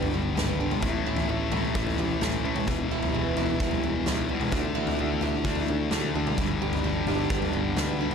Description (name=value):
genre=quiet-loud alternative rock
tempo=130 BPM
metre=4/4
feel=straight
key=unclear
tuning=A4 = 444 Hz
part: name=picked steel-string acoustic guitar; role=arpeggios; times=0.0-8.1 s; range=E2 to G4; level=-32 LUFS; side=right 12 dB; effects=tape echo
part: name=thick fuzz guitar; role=riff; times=0.0-8.1 s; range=E2 to D4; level=-29 LUFS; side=left 6 dB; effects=distortion
part: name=picked electric bass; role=bass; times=0.0-8.1 s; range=E1 to D2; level=-33 LUFS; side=right 1 dB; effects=none
part: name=big rock drum kit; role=drums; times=0.0-8.1 s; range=kick drum, snare drum, toms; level=-28 LUFS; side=left 1 dB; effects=none
room=small room ambience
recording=none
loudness=-24 LUFS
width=side -6 dB against mid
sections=0.0-8.1 A section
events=none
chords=0.0 G; 0.8 A; 2.7 Em; 4.5 Dadd9; 6.4 G